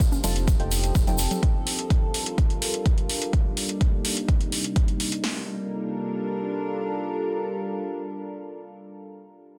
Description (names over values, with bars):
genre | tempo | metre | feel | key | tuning
progressive house | 126 BPM | 4/4 | straight | G minor | A4 = 440 Hz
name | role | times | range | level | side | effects
evolving wavetable pad | sustained chords | 0.1-8.8 s | C3 to Bb4 | -32 LUFS | equal | chorus, built-in reverb, sidechain pumping
deep house drum kit | drums | 0.0-5.3 s | hi-hat, kick drum, snare drum | -25 LUFS | equal | overdrive
electronic hi-hat | drums | 0.0-5.2 s | none | -30 LUFS | equal | overdrive, sidechain pumping on hats, sidechain pumping on cymbals, sidechain pumping on perc
egg shaker | percussion | 0.0-1.4 s | none | -35 LUFS | equal | none
congas | percussion | 0.1-1.4 s | none | -33 LUFS | equal | sidechain pumping on perc
deep mellow chord stab | stabs | 0.2-1.2 s | Eb4 to A5 | -37 LUFS | equal | chorus, sidechain pumping, delay
round analog bass | bass | 0.2-1.3 s | F1 | -29 LUFS | equal | tube saturation, sidechain pumping
room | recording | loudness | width
light reverb | dense, heavily limited modern master | -25 LUFS | mono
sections
0.0-5.2 A section; 5.2-9.0 B section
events
filter sweep on ambient pad 0.0-5.2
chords
0.0 F7; 1.4 Gm7; 3.3 Cm7; 5.2 Gm7